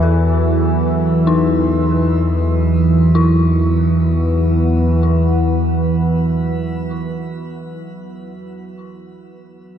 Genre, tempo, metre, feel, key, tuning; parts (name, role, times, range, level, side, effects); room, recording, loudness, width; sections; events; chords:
dark ambient drone; free time; A4 = 440 Hz
deep dark ambient pad; sustained chords; 0.0-7.2 s; E3 to E6; -19 LUFS; right 3 dB; chorus, built-in reverb, shimmer reverb
dark detuned synth bell; arpeggios; 0.0-9.8 s; D#4 to A4; -25 LUFS; left 4 dB; chorus, ping-pong delay, shimmer reverb
analog drone; drone; 0.0-6.8 s; E2 to E3; -15 LUFS; equal; chorus, phaser
bronze singing bowl; texture; 0.0-3.2 s; F#3 to F#4; -29 LUFS; right 4 dB
moderate huge ambient reverb, RT60 8.0 s; nothing above 10.3 kHz; -13 LUFS; side -9 dB against mid
0.0-3.1 A section; 3.1-8.1 B section
0.0 Esus2